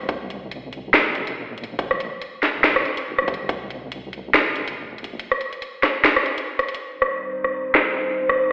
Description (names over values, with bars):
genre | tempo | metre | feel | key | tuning
deep dubstep | 141 BPM | 4/4 | swing 56% on 16ths, half-time | C minor | A4 = 440 Hz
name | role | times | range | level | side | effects
deep soft wobble bass | bass | 0.0-5.2 s | G1 to C2 | -37 LUFS | equal | chorus
electronic kick drum | drums | 0.1-3.6 s | none | -26 LUFS | equal | overdrive
garage drum kit | drums | 0.1-8.4 s | hi-hat, rim click, snare drum | -22 LUFS | equal | overdrive, low-pass filter on snare, low-pass filter on hats
dark analog pad | sustained chords | 6.9-8.5 s | G3 to C5 | -26 LUFS | equal | subtle chorus
room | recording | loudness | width
wet lush hall reverb, RT60 1.7 s | played on a big sound system in a bare room, stone room reverb, telephone sound | -22 LUFS | mono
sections
0.0-6.9 A section; 6.9-8.5 B section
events
none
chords
0.0 C5; 6.9 Cm